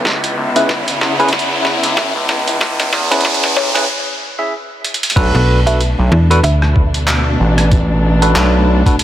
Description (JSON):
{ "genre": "glitch hop", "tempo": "94 BPM", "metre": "4/4", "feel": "swing 58% on 16ths", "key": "B dorian", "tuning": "A4 = 440 Hz", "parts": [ { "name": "dark symphonic string section", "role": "sustained chords", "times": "0.0-9.0 s", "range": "B2 to E4", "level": "-21 LUFS", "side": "left 1 dB", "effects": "vintage 12-bit sampler grit, sidechain pumping" }, { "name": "gritty driven synth bass", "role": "bass", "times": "0.0-8.8 s", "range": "G#1 to E2", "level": "-16 LUFS", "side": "equal", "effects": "overdrive, high-pass filter" }, { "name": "riser", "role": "sound effects", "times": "0.0-3.9 s", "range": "none", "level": "-20 LUFS", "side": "right 1 dB", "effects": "none" }, { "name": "boom bap sampler-style drum kit", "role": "drums", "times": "0.1-9.0 s", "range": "crash cymbal, handclaps, hi-hat, rim click, snare drum", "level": "-19 LUFS", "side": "right 1 dB", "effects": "high-pass filter on snare, high-pass filter on hats, high-pass filter on cymbals, high-pass filter on room" }, { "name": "electronic kick drum", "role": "drums", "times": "0.1-9.0 s", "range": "none", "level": "-15 LUFS", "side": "equal", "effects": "high-pass filter on kick, high-pass filter on room" }, { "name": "woody wave-folded pluck", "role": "melody", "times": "0.6-9.0 s", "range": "C#5 to A5", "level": "-23 LUFS", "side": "equal", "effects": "chorus, tape echo" }, { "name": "bell-like tine electric piano", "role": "stabs", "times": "0.6-8.9 s", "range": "C#4 to E5", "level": "-19 LUFS", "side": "equal", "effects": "phaser, sidechain pumping, tape echo" }, { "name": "slap-like FM bass", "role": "bass", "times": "5.3-7.4 s", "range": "B1 to E2", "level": "-12 LUFS", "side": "equal", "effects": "none" } ], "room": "light reverb, digital ambience", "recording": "high-pass filter", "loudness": "-12 LUFS", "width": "side -12 dB against mid", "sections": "0.0-5.2 A section; 5.2-9.0 B section", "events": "build-up 0.0-5.2; drum fill 0.0-3.9, 4.8-5.2; riser 0.0-3.9; filter sweep on synth pluck 0.0-5.2; filter sweep 0.0-5.2; break 3.9-5.2; drop 5.2-9.0", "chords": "0.1 C#m7; 5.2 Bm7" }